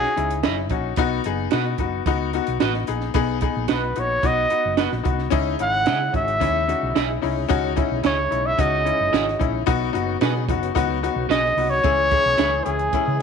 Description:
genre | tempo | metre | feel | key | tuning
uptempo 1960s-style soul | 110 BPM | 4/4 | straight | C# minor | A4 = 440 Hz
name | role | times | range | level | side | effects
mellow trumpet | melody | 0.0-0.4, 3.7-13.2 s | G#4 to F#5 | -21 LUFS | right 1 dB | slapback echo
bright upright piano | accompaniment | 0.0-13.2 s | B3 to G#4 | -24 LUFS | left 11 dB | none
hollow-body short-scale fingered electric bass | bass | 0.0-13.2 s | F#1 to C#3 | -27 LUFS | right 1 dB | none
compact cocktail drum kit | drums | 0.0-13.1 s | hi-hat, kick drum, snare drum | -25 LUFS | right 5 dB | none
electric guitar at the edge of break-up | stabs | 0.4-12.5 s | E4 to D#5 | -29 LUFS | right 12 dB | none
percussive tonewheel organ | sustained chords | 5.3-13.2 s | C#3 to G#4 | -33 LUFS | right 2 dB | slow rotary speaker, overdrive, chorus vibrato
room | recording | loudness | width
light reverb | 1960s-style stereo with parts hard left and right | -19 LUFS | side -6 dB against mid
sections
0.0-13.2 A section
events
none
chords
0.0 C#madd9; 1.0 B; 5.3 C#madd9; 9.7 B; 11.8 C#m

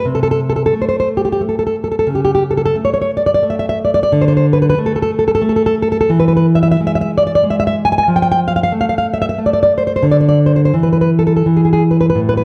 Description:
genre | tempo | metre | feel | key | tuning
romantic piece for solo classical guitar | 79-96 BPM | 3/4 | rubato | A minor | A4 = 441 Hz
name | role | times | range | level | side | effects
nylon-string guitar | solo | 0.0-12.4 s | A2 to G#5 | -14 LUFS | equal | none
room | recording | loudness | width
moderate recital hall reverb, RT60 1.7 s | none | -14 LUFS | mono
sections
0.0-12.4 A section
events
none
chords
0.1 Am/C; 2.1 A/C#; 4.1 D5; 6.1 E; 8.1 F; 10.1 N.C.

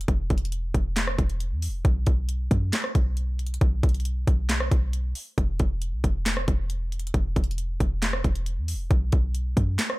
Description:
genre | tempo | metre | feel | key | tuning
hip hop, trap | 136 BPM | 4/4 | half-time | unclear | A4 = 444 Hz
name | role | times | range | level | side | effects
clean 808-style bass | bass | 0.0-9.8 s | E1 to F#2 | -26 LUFS | equal | none
trap drum kit | drums | 0.0-10.0 s | handclaps, hi-hat, kick drum, rim click, snare drum | -25 LUFS | equal | none
room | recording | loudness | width
little or no reverb | dark, warm production | -23 LUFS | side -20 dB against mid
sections
0.0-10.0 A section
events
none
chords
none

